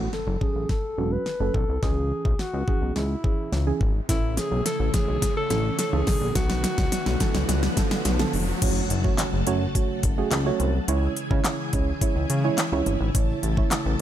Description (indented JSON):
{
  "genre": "dance-pop",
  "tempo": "106 BPM",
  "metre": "4/4",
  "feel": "straight",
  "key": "F# minor",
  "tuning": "A4 = 439 Hz",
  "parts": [
    { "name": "warm alto saxophone", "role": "melody", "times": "0.0-8.0 s", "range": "E4 to B4", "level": "-30 LUFS", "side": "left 1 dB", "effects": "low-pass filter, digital delay" },
    { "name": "deep mellow chord stab", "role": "accompaniment", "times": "0.0-13.8 s", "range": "D3 to C#5", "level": "-30 LUFS", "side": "right 7 dB", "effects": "chorus, sidechain pumping, low-pass filter" },
    { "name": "chorused synth bass", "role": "bass", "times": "0.0-14.0 s", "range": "E1 to C#3", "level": "-25 LUFS", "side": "left 1 dB", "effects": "sidechain pumping" },
    { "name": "riser and impact", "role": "sound effects", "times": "0.0-10.9 s", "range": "none", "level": "-36 LUFS", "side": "equal", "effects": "none" },
    { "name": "pop drum kit", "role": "drums", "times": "0.1-13.8 s", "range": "crash cymbal, handclaps, hi-hat, kick drum, snare drum", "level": "-25 LUFS", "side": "left 1 dB", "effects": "none" },
    { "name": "ensemble organ-string", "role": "sustained chords", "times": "4.1-14.0 s", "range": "C#3 to C#5", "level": "-31 LUFS", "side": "left 1 dB", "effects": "ensemble chorus, sidechain pumping, low-pass filter" }
  ],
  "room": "little or no reverb",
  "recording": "none",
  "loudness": "-22 LUFS",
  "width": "side -11 dB against mid",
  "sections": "0.0-8.6 A section; 8.6-14.0 B section",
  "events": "build-up 0.0-8.6; drum fill 0.0-8.6; impact 0.0-1.8, 8.6-10.9; riser 0.0-8.6; filter sweep 0.0-8.6; drop 8.6-14.0",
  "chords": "0.0 F#m; 1.8 C#m; 4.1 A; 6.1 Bm7; 8.6 F#m; 10.9 C#m; 13.1 A"
}